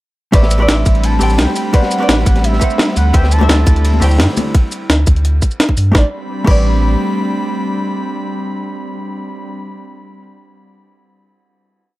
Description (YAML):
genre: liquid drum and bass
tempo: 171 BPM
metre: 4/4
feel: straight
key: A dorian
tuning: A4 = 437 Hz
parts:
  - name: warm velvety synth lead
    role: melody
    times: 0.3-4.0 s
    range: E5 to A5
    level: -22 LUFS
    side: equal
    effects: chorus, digital delay
  - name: hollow-body jazz guitar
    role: accompaniment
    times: 0.3-10.2 s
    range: D3 to G5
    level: -20 LUFS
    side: equal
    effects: dub echo
  - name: airy breathy pad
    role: sustained chords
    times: 0.6-9.5 s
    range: G3 to B5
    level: -21 LUFS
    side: equal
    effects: chorus, sidechain pumping
  - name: saturated sub bass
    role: bass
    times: 0.3-7.0 s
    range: A1 to G2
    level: -13 LUFS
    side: equal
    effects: none
  - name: crunchy breakbeat drum kit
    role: drums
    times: 0.3-4.5 s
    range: hi-hat, ride cymbal, snare drum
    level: -24 LUFS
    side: equal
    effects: high-pass filter on cymbals, high-pass filter on hats, high-pass filter on snare, high-pass filter on room
  - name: electronic kick drum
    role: drums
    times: 0.3-6.6 s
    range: none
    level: -11 LUFS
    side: equal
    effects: overdrive
  - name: jungle sampler-style drum kit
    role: drums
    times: 0.3-6.6 s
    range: crash cymbal, hi-hat, shaker, snare drum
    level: -17 LUFS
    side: equal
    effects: none
  - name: congas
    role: percussion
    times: 3.4-4.4 s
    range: none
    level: -22 LUFS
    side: left 4 dB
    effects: none
room: small room ambience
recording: none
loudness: -11 LUFS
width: side -17 dB against mid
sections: 0.3-5.9 drop; 5.9-8.8 final chord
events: drop 0.3-5.9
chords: 0.3 Am11; 3.1 D13sus4; 5.9 Am11